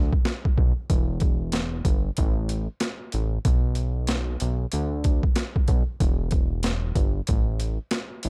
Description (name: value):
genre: hip hop, boom-bap hip-hop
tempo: 94 BPM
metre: 4/4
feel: swing 59% on 16ths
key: E minor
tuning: A4 = 439 Hz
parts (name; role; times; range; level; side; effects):
- fat analog bass; bass; 0.0-8.3 s; E1 to D2; -28 LUFS; equal; none
- boom bap sampler-style drum kit; drums; 0.1-8.3 s; hi-hat, kick drum, snare drum; -26 LUFS; equal; overdrive
room: little or no reverb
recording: dark, warm production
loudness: -25 LUFS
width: mono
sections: 0.0-8.3 A section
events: break 0.0-0.9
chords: none